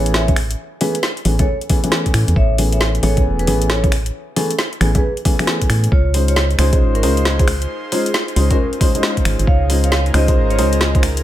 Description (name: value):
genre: UK garage, two-step garage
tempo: 135 BPM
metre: 4/4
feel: swing 64% on 16ths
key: Db major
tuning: A4 = 440 Hz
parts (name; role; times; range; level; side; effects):
- dark baby grand piano; stabs; 0.0-11.0 s; E3 to C5; -20 LUFS; left 1 dB; dub echo
- organ-like FM bass; bass; 0.0-11.2 s; E1 to A2; -17 LUFS; equal; none
- vibraphone with medium mallets; melody; 0.1-11.0 s; C#4 to F5; -25 LUFS; right 1 dB; ping-pong delay
- garage drum kit; drums; 0.1-11.2 s; finger snaps, hi-hat, snare drum; -21 LUFS; equal; studio reverb
- electronic kick drum; drums; 0.3-11.0 s; none; -17 LUFS; equal; studio reverb
- airy breathy pad; sustained chords; 6.5-11.2 s; Eb4 to C5; -29 LUFS; right 1 dB; chorus, sidechain pumping
room: digital ambience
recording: none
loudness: -14 LUFS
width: side -13 dB against mid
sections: 0.0-11.2 A section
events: none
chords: 0.0 Amaj9; 5.9 Dbmaj9